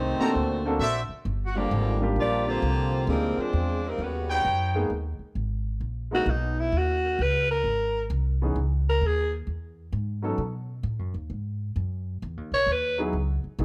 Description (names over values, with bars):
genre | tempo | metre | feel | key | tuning
jazz | 131 BPM | 4/4 | swing 66% on 8ths | G# minor from 4.9 s | A4 = 440 Hz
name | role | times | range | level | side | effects
mellow saxophone section | melody | 0.0-4.5 s | F3 to D5 | -33 LUFS | equal | none
bright trombone section | second line | 0.0-4.5 s | Bb2 to D4 | -34 LUFS | equal | none
upright bass | bass | 0.0-13.6 s | G1 to B2 | -30 LUFS | equal | none
warm grand piano | accompaniment | 0.2-13.6 s | Bb2 to A4 | -31 LUFS | equal | none
warm trumpet section | stabs | 0.2-1.0, 4.3-4.9 s | Eb4 to Bb5 | -29 LUFS | equal | none
growling alto saxophone | melody | 6.1-9.3, 12.5-13.0 s | D#4 to C#5 | -27 LUFS | equal | none
room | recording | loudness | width
light reverb | none | -27 LUFS | mono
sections
0.0-4.9 A section; 4.9-13.6 B section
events
alto saxophone solo 4.9-13.6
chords
0.3 D7b13; 1.3 Gm7; 3.1 Dm7b5; 4.0 Eb7alt; 4.9 G#madd9; 6.7 C#9sus4; 7.6 G#; 8.6 C#madd9; 10.4 B5; 12.2 Emaj7sus2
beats
0.34 0.80 | 1.25 1.71 2.17 2.62 | 3.08 3.53 3.99 4.45 | 4.90 5.36 5.82 6.27 | 6.73 7.19 7.64 8.10 | 8.56 9.02 9.47 9.93 | 10.39 10.85 11.30 11.76 | 12.22 12.67 13.13 13.59